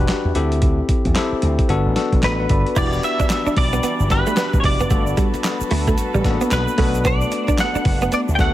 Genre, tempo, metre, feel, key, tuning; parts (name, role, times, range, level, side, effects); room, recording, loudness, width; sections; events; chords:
R&B, new jack swing; 112 BPM; 4/4; swing 62% on 16ths; A4 = 439 Hz
barky tine electric piano; accompaniment; 0.0-8.5 s; Bb3 to F#5; -24 LUFS; left 4 dB
slap bass with an envelope filter; bass; 0.0-8.5 s; E1 to E2; -21 LUFS; equal
boom bap sampler-style drum kit; drums; 0.1-8.5 s; crash cymbal, handclaps, hi-hat, kick drum, snare drum; -20 LUFS; equal
direct-recorded clean electric guitar; melody; 2.2-8.5 s; B4 to G5; -23 LUFS; right 1 dB; ensemble chorus, digital delay
muted chamber string section; sustained chords; 2.8-8.5 s; E3 to B4; -29 LUFS; equal
direct-recorded clean electric guitar; riff; 2.8-8.4 s; G3 to E4; -24 LUFS; right 3 dB; ensemble chorus
egg shaker; percussion; 2.8-8.5 s; -38 LUFS; right 8 dB
little or no reverb; -16 LUFS; side -14 dB against mid
0.0-2.8 A section; 2.8-8.5 B section
0.4 D9sus4; 1.7 Gmaj9; 2.8 Em7; 4.9 Gmaj9; 6.8 Bm7